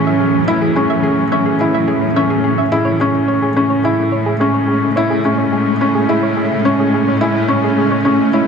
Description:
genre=piano and strings electronica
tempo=107 BPM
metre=4/4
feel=straight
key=A major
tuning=A4 = 441 Hz
part: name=granular cloud pad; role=sustained chords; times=0.0-8.5 s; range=E3 to C#4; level=-18 LUFS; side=right 1 dB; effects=built-in reverb
part: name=soft round pluck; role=arpeggios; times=0.0-8.4 s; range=G#4 to E5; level=-22 LUFS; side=equal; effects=chorus, ping-pong delay
part: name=felt-muted upright piano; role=riff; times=0.0-8.5 s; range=C#4 to E4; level=-15 LUFS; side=equal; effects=ping-pong delay
part: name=clear studio cello section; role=bass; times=0.0-8.5 s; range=A2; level=-21 LUFS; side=left 1 dB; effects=none
part: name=swell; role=sound effects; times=1.8-2.7 s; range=none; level=-26 LUFS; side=left 4 dB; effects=none
room=wet lush hall reverb, RT60 1.9 s, small room ambience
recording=none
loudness=-12 LUFS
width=side -6 dB against mid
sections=0.0-8.5 A section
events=swell 1.8-2.7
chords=0.0 C#m; 2.7 Amaj7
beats=| 0.48 1.04 1.60 2.16 | 2.72 3.28 3.84 4.40 | 4.96 5.52 6.08 6.64 | 7.21 7.77 8.33

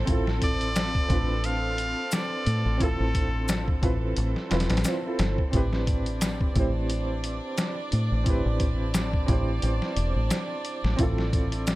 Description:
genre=trip hop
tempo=88 BPM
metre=4/4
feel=swing 56% on 16ths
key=A minor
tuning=A4 = 444 Hz
part: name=felt-muted upright piano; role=accompaniment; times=0.0-11.8 s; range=C4 to C5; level=-31 LUFS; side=right 2 dB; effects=tremolo, tape echo
part: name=clear chamber violin section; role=sustained chords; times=0.0-11.8 s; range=C4 to D5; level=-36 LUFS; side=right 1 dB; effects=none
part: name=deep dub fingered electric bass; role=bass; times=0.0-11.8 s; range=E1 to A2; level=-27 LUFS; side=equal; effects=none
part: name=trip hop sampler-style drum kit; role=drums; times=0.1-11.8 s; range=hi-hat, kick drum, snare drum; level=-27 LUFS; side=equal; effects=none
part: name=trumpet with straight mute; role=melody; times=0.4-3.8 s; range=A4 to F5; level=-32 LUFS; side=equal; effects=tape echo
part: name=maracas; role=percussion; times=0.8-11.8 s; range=none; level=-37 LUFS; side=left 2 dB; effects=none
room=studio ambience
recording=none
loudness=-23 LUFS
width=side -18 dB against mid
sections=0.0-11.8 A section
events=none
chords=0.1 Dm7/A; 5.5 Am7; 11.0 Dm7/A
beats=| 0.08 0.76 1.44 2.12 | 2.81 3.49 4.17 4.85 | 5.53 6.21 6.90 7.58 | 8.26 8.94 9.62 10.31 | 10.99 11.67

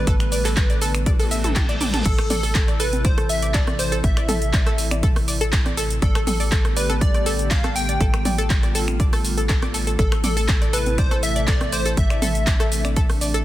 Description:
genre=progressive house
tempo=121 BPM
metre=4/4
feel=straight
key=A minor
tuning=A4 = 438 Hz
part: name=plucky unison lead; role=melody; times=0.0-13.4 s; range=A4 to G5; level=-27 LUFS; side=equal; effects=sidechain pumping, dub echo
part: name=airy breathy pad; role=sustained chords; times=0.0-13.4 s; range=C3 to A4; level=-29 LUFS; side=left 1 dB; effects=chorus, sidechain pumping
part: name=tight sequencer bass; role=bass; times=0.0-13.4 s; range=A1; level=-24 LUFS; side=equal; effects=sidechain pumping
part: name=analog pluck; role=arpeggios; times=0.1-13.4 s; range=G4 to E5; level=-28 LUFS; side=equal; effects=chorus, sidechain pumping, dub echo
part: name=electronic kick drum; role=drums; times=0.1-13.1 s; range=none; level=-20 LUFS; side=equal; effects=none
part: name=house drum kit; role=drums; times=0.1-13.4 s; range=cabasa, crash cymbal, finger snaps, handclaps, hi-hat, toms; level=-27 LUFS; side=right 1 dB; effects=none
part: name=reverse cymbal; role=sound effects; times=1.3-2.1 s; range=none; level=-32 LUFS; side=right 1 dB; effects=none
part: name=punchy analog drum machine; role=percussion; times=2.2-13.2 s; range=congas, rim click, toms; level=-30 LUFS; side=right 1 dB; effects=overdrive, sidechain pumping on snare, sidechain pumping on toms, sidechain pumping on perc
room=little or no reverb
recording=dense, heavily limited modern master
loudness=-18 LUFS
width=side -14 dB against mid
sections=0.0-13.4 A section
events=drum fill 1.1-2.1; reverse cymbal 1.3-2.1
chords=0.0 Gadd9/A; 2.1 Am; 6.0 Gadd9/A; 10.0 Am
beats=| 0.07 0.57 1.06 1.56 | 2.06 2.55 3.05 3.54 | 4.04 4.54 5.03 5.53 | 6.02 6.52 7.01 7.51 | 8.01 8.50 9.00 9.49 | 9.99 10.48 10.98 11.48 | 11.97 12.47 12.96

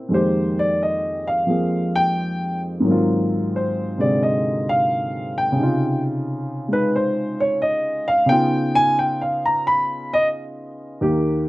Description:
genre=solo jazz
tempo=88 BPM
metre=4/4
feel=swing 69% on 8ths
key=unclear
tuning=A4 = 439 Hz
part: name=dark grand piano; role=solo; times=0.0-11.5 s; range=Eb2 to Cb6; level=-18 LUFS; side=equal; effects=none
room=little or no reverb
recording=recorded outdoors, with no room sound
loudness=-18 LUFS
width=side -18 dB against mid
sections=0.0-11.5 A section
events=grand piano solo 0.0-11.5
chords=0.1 Fm11; 2.8 Ab13; 5.6 Dbmaj9; 8.3 Db9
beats=| 0.12 0.80 1.48 2.16 | 2.84 3.52 4.20 4.88 | 5.56 6.24 6.92 7.61 | 8.29 8.97 9.65 10.33 | 11.01

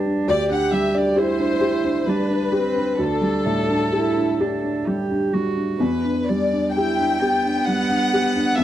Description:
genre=neoclassical piano and strings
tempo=65 BPM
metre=3/4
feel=rubato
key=unclear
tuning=A4 = 442 Hz
part: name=warm cello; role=second line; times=0.0-8.6 s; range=B3 to G4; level=-24 LUFS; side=right 5 dB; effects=none
part: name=dark baby grand piano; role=accompaniment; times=0.0-8.6 s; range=D2 to G4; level=-22 LUFS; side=left 1 dB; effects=none
part: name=warm chamber violin section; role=melody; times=0.3-8.6 s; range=A4 to G5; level=-23 LUFS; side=left 3 dB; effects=none
room=studio ambience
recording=dry, close 1970s-style studio recording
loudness=-18 LUFS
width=side -12 dB against mid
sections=0.0-8.6 A section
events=none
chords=0.3 D7sus4; 5.8 Em7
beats=| 0.27 1.17 2.09 | 3.00 3.94 4.87 | 5.80 6.75 7.67 | 8.58

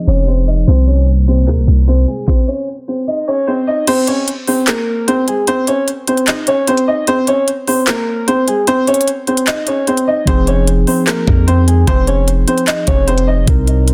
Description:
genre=hip hop, trap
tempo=150 BPM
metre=4/4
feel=half-time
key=unclear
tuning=A4 = 435 Hz
part: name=dark baby grand piano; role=melody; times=0.0-13.5 s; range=Ab3 to Eb5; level=-17 LUFS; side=equal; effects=digital delay
part: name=dark analog pad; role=sustained chords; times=0.0-2.3 s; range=C3 to Ab4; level=-24 LUFS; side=equal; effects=chorus
part: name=warm 808-style bass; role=bass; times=0.1-2.1, 10.3-13.9 s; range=F1 to F2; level=-14 LUFS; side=equal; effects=none
part: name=trap drum kit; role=drums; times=0.1-13.9 s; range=crash cymbal, handclaps, hi-hat, kick drum, snare drum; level=-19 LUFS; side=equal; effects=none
part: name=mellow tine electric piano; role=accompaniment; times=10.3-13.9 s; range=C3 to Bb4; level=-22 LUFS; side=equal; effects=none
room=digital ambience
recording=dense, heavily limited modern master, low-pass filter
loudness=-14 LUFS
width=mono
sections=0.0-3.9 A section; 3.9-13.9 B section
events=filter sweep 0.0-3.9; stop 2.3-3.9; kick muted 3.9-10.3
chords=0.0 Fm7; 0.7 Cm7; 3.9 Abadd11 (rootless); 10.3 Fm7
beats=0.28 | 0.68 1.07 1.48 1.88 | 2.27 2.67 3.08 3.48 | 3.88 4.28 4.67 5.08 | 5.47 5.88 6.28 6.67 | 7.08 7.47 7.88 8.28 | 8.68 9.07 9.47 9.88 | 10.28 10.68 11.07 11.47 | 11.88 12.28 12.68 13.07 | 13.47 13.88

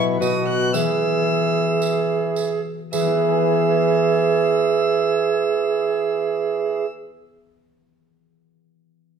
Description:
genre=classical, renaissance-style consort dance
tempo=106 BPM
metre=4/4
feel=straight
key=E major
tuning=A4 = 442 Hz
part: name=rich violin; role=melody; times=0.0-6.9 s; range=D#6 to F#6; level=-29 LUFS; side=equal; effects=none
part: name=bright tenor recorder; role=second line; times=0.0-6.9 s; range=E4 to G#4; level=-21 LUFS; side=right 8 dB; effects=none
part: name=concert harp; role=accompaniment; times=0.0-7.2 s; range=B2 to G#5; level=-25 LUFS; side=left 9 dB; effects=none
part: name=clear bassoon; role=bass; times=0.0-6.9 s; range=B2 to E3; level=-23 LUFS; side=right 3 dB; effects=none
part: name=tambourine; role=percussion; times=0.2-3.2 s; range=none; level=-34 LUFS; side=right 6 dB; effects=none
room=wet stone room reverb, RT60 1.2 s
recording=none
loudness=-18 LUFS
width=side -7 dB against mid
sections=0.0-2.9 A section; 2.9-7.5 B section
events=slowing down 0.0-2.9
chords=0.2 B; 0.7 E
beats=0.21 | 0.74 1.27 1.82 2.37 | 2.93 3.50 4.06 4.63 | 5.19 5.76 6.32 6.89

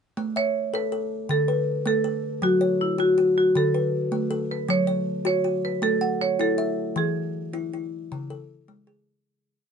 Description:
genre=southern african traditional, mbira-style interlocking cycle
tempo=106 BPM (dotted quarters)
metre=12/8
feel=straight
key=A major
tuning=A4 = 440 Hz
part: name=kalimba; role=arpeggios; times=0.2-9.4 s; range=C#3 to F#5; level=-26 LUFS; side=left 2 dB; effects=none
part: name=marimba with medium hard mallets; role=melody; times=0.4-7.7 s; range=E4 to C#5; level=-24 LUFS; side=right 2 dB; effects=none
room=moderate booth ambience, RT60 0.2 s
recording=nothing above 10.8 kHz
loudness=-22 LUFS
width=side -6 dB against mid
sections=0.2-9.3 A section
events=fade-out 7.0-9.3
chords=0.2 A; 1.3 D5; 2.4 F#m; 3.6 D; 4.7 F#m; 5.8 A5; 7.0 N.C.; 8.1 C#m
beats=| 0.18 0.74 1.30 1.86 | 2.43 2.99 3.56 4.12 | 4.69 5.26 5.83 6.40 | 6.97 7.54 8.11 8.68

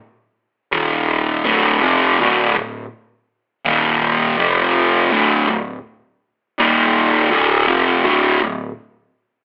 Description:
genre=metal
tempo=82 BPM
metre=4/4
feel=straight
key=unclear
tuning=A4 = 441 Hz
part: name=fuzz guitar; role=solo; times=0.7-8.7 s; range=D2 to F3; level=-16 LUFS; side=equal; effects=distortion
room=light reverb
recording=band playing live in one room, telephone sound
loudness=-16 LUFS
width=mono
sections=0.0-5.1 A section; 5.1-9.4 B section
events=none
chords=0.0 N.C.; 0.7 Eb5; 1.5 Dm; 3.7 Eb5; 4.4 F5; 5.1 D5; 6.6 Eb5; 7.3 Dm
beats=0.73 1.46 | 2.19 2.92 3.65 4.38 | 5.12 5.85 6.58 7.31 | 8.04

